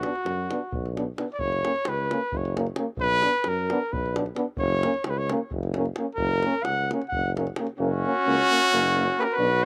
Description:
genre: balkan folk, Balkan brass band.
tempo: 262 BPM (eighths).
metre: 7/8.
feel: straight.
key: F# major.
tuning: A4 = 436 Hz.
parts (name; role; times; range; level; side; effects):
mellow trumpet; melody; 0.0-9.7 s; F#4 to F#5; -27 LUFS; equal; none.
clear French horn; accompaniment; 0.0-9.7 s; C#4 to D4; -35 LUFS; equal; slapback echo.
warm euphonium; accompaniment; 0.0-9.7 s; A#3 to B3; -34 LUFS; equal; none.
warm tuba; bass; 0.0-9.6 s; F#1 to F#2; -31 LUFS; equal; none.
davul; percussion; 0.0-7.7 s; none; -38 LUFS; equal; slapback echo.
warm trumpet; second line; 7.8-9.7 s; C#4 to G4; -31 LUFS; equal; slapback echo.
room: little or no reverb.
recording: recorded outdoors, with no room sound.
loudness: -26 LUFS.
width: mono.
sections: 0.0-7.8 A section; 7.8-9.7 B section.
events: trumpet solo 0.0-7.8.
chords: 0.0 Bm; 1.4 F#; 3.0 Bm; 4.6 F#.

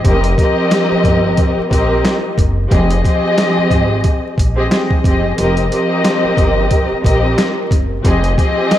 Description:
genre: hip hop, boom-bap hip-hop.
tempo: 90 BPM.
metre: 4/4.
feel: swing 58% on 16ths.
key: F minor.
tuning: A4 = 441 Hz.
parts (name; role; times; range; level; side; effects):
warm studio string section; accompaniment; 0.0-8.8 s; F3 to Eb5; -14 LUFS; left 1 dB; high-pass filter, low-pass filter.
upright bass; bass; 0.0-8.3 s; F1 to Bb1; -18 LUFS; equal; none.
boom bap sampler-style drum kit; drums; 0.0-8.8 s; hi-hat, kick drum, snare drum; -16 LUFS; equal; none.
room: moderate plate reverb, RT60 2.2 s.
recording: dreamy mix soaked in reverb, vinyl crackle.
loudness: -12 LUFS.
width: side -12 dB against mid.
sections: 0.0-8.8 A section.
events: kick muted 5.4-6.0.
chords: 0.0 Cm7/F; 2.7 Fm7; 5.4 Cm7/F; 8.0 Fm7.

